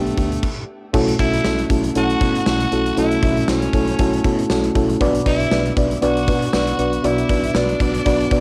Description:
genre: 1980s-style pop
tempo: 118 BPM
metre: 4/4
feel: swing 55% on 16ths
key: unclear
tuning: A4 = 438 Hz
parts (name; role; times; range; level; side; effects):
- breathy tenor saxophone; melody; 0.0-8.4 s; A3 to F#4; -28 LUFS; equal; cassette tape, shimmer reverb
- mellow FM electric piano; accompaniment; 0.0-8.4 s; B2 to D5; -21 LUFS; equal; chorus, cassette tape, shimmer reverb
- mellow fretless electric bass; bass; 0.0-8.4 s; B1 to B2; -28 LUFS; equal; transformer saturation
- gated 80s drum kit; drums; 0.1-8.4 s; crash cymbal, hi-hat, kick drum, snare drum, tambourine; -24 LUFS; equal; cassette tape
- dark studio violin section; second line; 1.2-8.4 s; C#5 to F#5; -34 LUFS; equal; cassette tape, shimmer reverb, tape echo
room: moderate booth ambience, RT60 0.3 s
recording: home recording on cassette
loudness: -18 LUFS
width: mono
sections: 0.9-8.4 A section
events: stop 0.4-0.9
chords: 0.0 Gadd9/B; 0.9 F#m7/B; 5.0 Bm

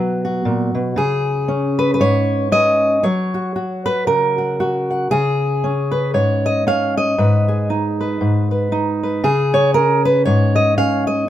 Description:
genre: folk, solo fingerstyle acoustic guitar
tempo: 116 BPM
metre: 4/4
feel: swing 58% on 8ths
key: unclear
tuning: A4 = 440 Hz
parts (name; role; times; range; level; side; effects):
- fingerpicked steel-string acoustic guitar; solo; 0.0-11.3 s; Ab2 to Gb5; -15 LUFS; equal; none
room: light reverb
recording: minimal, uncompressed stereo recording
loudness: -15 LUFS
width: side -12 dB against mid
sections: 0.0-11.3 A section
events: none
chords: 0.0 Cb5; 1.0 Db5; 3.0 Gb; 5.1 Db5; 7.2 Abm; 9.2 Db5

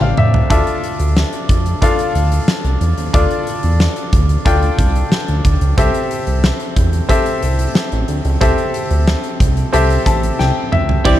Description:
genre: 1980s-style pop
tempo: 91 BPM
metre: 4/4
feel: straight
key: unclear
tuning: A4 = 440 Hz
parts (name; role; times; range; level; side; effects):
- bright grand piano; accompaniment; 0.0-11.2 s; C4 to Bb5; -18 LUFS; left 2 dB; none
- chorused synth bass; bass; 0.0-11.2 s; A1 to A2; -16 LUFS; equal; none
- huge arena drum kit; drums; 0.0-11.2 s; crash cymbal, hi-hat, kick drum, snare drum, toms; -17 LUFS; equal; none
- twelve-string electric guitar; riff; 11.0-11.2 s; E4 to D5; -17 LUFS; right 7 dB; lush chorus, slapback echo
- phased analog pad; sustained chords; 11.1-11.2 s; E3 to E4; -19 LUFS; right 7 dB; phaser, chorus
room: little or no reverb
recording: none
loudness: -13 LUFS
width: side -13 dB against mid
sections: 0.0-11.1 A section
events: grand piano fill 0.0-0.5, 9.7-11.1; drum fill 0.0-0.5, 10.4-11.1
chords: 0.0 Asus4; 0.5 Dmadd9; 5.8 Am7

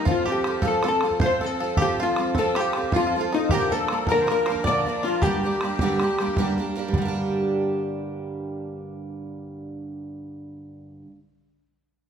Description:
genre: celtic folk, Celtic slip jig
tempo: 105 BPM (dotted quarters)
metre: 9/8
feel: straight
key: G minor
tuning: A4 = 440 Hz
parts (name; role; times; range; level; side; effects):
- hollow-body jazz guitar; melody; 0.0-6.6 s; Eb4 to D5; -25 LUFS; left 3 dB; none
- bluegrass banjo; second line; 0.0-6.5 s; Eb4 to D5; -31 LUFS; right 2 dB; none
- musette accordion; second line; 0.0-6.5 s; Eb4 to D5; -30 LUFS; left 5 dB; none
- picked twelve-string acoustic guitar; accompaniment; 0.0-11.2 s; G2 to Bb4; -26 LUFS; right 3 dB; none
- bodhran; percussion; 0.1-7.1 s; none; -27 LUFS; right 2 dB; none
room: moderate recital hall reverb, RT60 1.5 s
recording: minimal, uncompressed stereo recording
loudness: -21 LUFS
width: side -7 dB against mid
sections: 0.0-6.9 A section; 6.9-10.4 B section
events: none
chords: 0.1 F; 3.5 Bb; 5.2 Gm

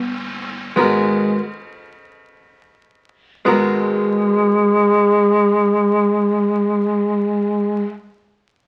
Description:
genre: jazz ballad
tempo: 37 BPM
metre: 4/4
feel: swing 66% on 8ths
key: G# minor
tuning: A4 = 439 Hz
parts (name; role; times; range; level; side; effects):
- breathy tenor saxophone; melody; 0.0-7.9 s; G#3 to B3; -18 LUFS; equal; none
- archtop guitar, miked and amplified; accompaniment; 0.0-7.9 s; G#3 to A#4; -22 LUFS; equal; none
- upright bass; bass; 0.0-7.9 s; G1 to G#1; -34 LUFS; equal; none
- vintage brush drum kit; drums; 0.8-3.8 s; kick drum, ride cymbal; -34 LUFS; equal; none
room: moderate large studio reverb, RT60 0.9 s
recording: very old 78 rpm record, vinyl crackle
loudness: -17 LUFS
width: mono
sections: 0.8-7.2 A section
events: none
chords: 0.0 G#m9

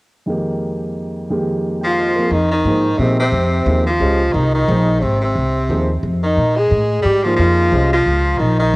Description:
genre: modal jazz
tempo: 177 BPM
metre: 3/4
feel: swing 62% on 8ths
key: F minor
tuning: A4 = 442 Hz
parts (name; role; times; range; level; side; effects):
- dark concert grand piano; accompaniment; 0.3-7.9 s; F2 to G5; -21 LUFS; right 1 dB; cassette tape
- edgy tenor saxophone; second line; 1.8-8.8 s; C3 to Ab3; -20 LUFS; left 1 dB; cassette tape
- breathy tenor saxophone; melody; 1.9-8.8 s; C4 to Ab4; -18 LUFS; equal; cassette tape
- upright bass; bass; 2.3-8.8 s; Ab1 to Bb2; -17 LUFS; equal; none
room: light reverb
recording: home recording on cassette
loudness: -14 LUFS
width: side -23 dB against mid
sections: 0.3-2.3 A section; 2.3-8.8 B section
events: none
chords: 0.3 Fm11; 6.4 Bbm11

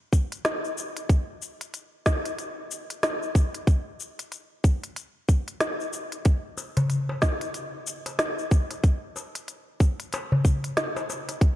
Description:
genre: downtempo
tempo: 93 BPM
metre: 4/4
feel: swing 60% on 16ths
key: none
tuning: none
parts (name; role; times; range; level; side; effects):
- electronic kick drum; drums; 0.1-11.6 s; none; -20 LUFS; equal; none
- organic electronic drum kit; drums; 0.1-11.6 s; cabasa, hi-hat, snare drum; -29 LUFS; left 1 dB; none
- darbuka; percussion; 6.6-11.4 s; none; -27 LUFS; left 1 dB; none
room: moderate concert hall reverb, RT60 2.5 s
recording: dark, warm production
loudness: -24 LUFS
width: side -14 dB against mid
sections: 0.0-11.6 A section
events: none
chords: none

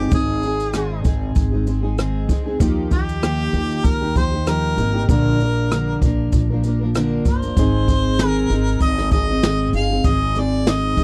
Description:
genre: acoustic pop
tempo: 97 BPM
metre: 4/4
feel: swing 55% on 16ths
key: unclear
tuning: A4 = 441 Hz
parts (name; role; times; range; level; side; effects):
- warm harmonica; melody; 0.0-11.0 s; G4 to F5; -26 LUFS; equal; none
- fingerpicked plugged-in steel-string acoustic guitar; accompaniment; 0.0-11.0 s; Ab2 to Bb4; -24 LUFS; equal; double-tracked
- upright bass; bass; 0.0-11.0 s; G1 to Eb2; -24 LUFS; equal; none
- jazz brush drum kit; drums; 0.1-11.0 s; kick drum, rim click, shaker, snare drum; -22 LUFS; equal; none
room: little or no reverb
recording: dry, close 1970s-style studio recording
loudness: -19 LUFS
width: mono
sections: 0.0-11.0 A section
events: none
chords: 0.0 Ab; 2.6 Ebadd9; 5.1 Bb; 7.6 Ab

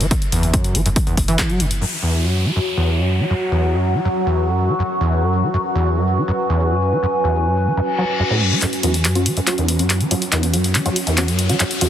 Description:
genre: driving peak-time techno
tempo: 141 BPM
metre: 4/4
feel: straight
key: unclear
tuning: A4 = 440 Hz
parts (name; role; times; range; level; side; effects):
- overdriven acid bass; riff; 0.0-11.9 s; E2 to A3; -19 LUFS; equal; distortion, analog chorus, sidechain pumping, digital delay
- saturated sub bass; bass; 0.0-1.8 s; F#1; -22 LUFS; equal; overdrive, sidechain pumping, low-pass filter
- punchy analog drum machine; drums; 0.0-1.8, 8.6-11.9 s; handclaps, hi-hat; -22 LUFS; left 1 dB; overdrive, sidechain pumping on hats, low-pass filter on hats, low-pass filter on snare
- electronic kick drum; drums; 0.1-1.5 s; none; -19 LUFS; equal; overdrive
- overtone-sweeping drone; drone; 2.2-8.7 s; F#3 to F#4; -23 LUFS; left 1 dB; chorus, built-in reverb, phaser, sidechain pumping
- downlifter, reverse cymbal and riser; sound effects; 1.8-11.9 s; none; -26 LUFS; left 2 dB; none
- warbly tape-like pad; texture; 1.8-11.9 s; C#4 to G#5; -25 LUFS; equal; chorus, built-in reverb, sidechain pumping
- rave stab; stabs; 8.8-11.9 s; F#3 to F#4; -24 LUFS; right 1 dB; chorus, built-in reverb, sidechain pumping, digital delay
room: moderate huge ambient reverb, RT60 6.1 s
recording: heavily compressed radio sound, multiband compression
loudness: -16 LUFS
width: side -10 dB against mid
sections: 0.0-1.8 A section; 1.8-8.6 B section; 8.6-11.9 C section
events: filter sweep on acid bass 0.0-1.8; reverse cymbal 7.9-8.6; build-up 8.6-11.9; drum fill 8.6-11.9; riser 8.6-11.9; filter sweep on synth stab 8.6-11.9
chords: 0.0 F#5

